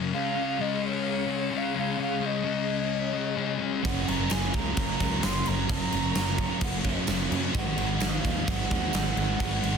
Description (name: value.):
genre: rock, shoegaze and dream pop.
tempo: 130 BPM.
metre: 4/4.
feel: straight.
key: Gb lydian.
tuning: A4 = 440 Hz.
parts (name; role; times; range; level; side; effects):
phased string machine; sustained chords; 0.0-9.8 s; Gb3 to F5; -38 LUFS; right 1 dB; ensemble chorus, phaser.
thick fuzz guitar; riff; 0.0-9.8 s; Gb2 to Db4; -30 LUFS; left 9 dB; distortion, wide subtle chorus.
alto ocarina; melody; 0.1-9.8 s; Db5 to C6; -33 LUFS; right 4 dB; slapback echo.
crunchy overdriven guitar; riff; 3.8-9.8 s; Gb2 to Eb4; -32 LUFS; right 14 dB; reverse reverb.
big rock drum kit; drums; 3.8-9.7 s; crash cymbal, kick drum, snare drum; -29 LUFS; equal; soft clipping on kick.
picked electric bass; bass; 3.9-9.8 s; Gb1 to Gb2; -32 LUFS; right 1 dB; none.
twelve-string electric guitar; arpeggios; 4.3-9.8 s; Eb3 to Gb4; -42 LUFS; left 9 dB; none.
tambourine; percussion; 4.3-9.0 s; none; -40 LUFS; right 20 dB; none.
room: studio reverb.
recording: dense, heavily limited modern master.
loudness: -25 LUFS.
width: side -6 dB against mid.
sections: 0.0-9.8 A section.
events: none.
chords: 0.1 Db; 3.8 Gbmaj7; 7.5 Ab5.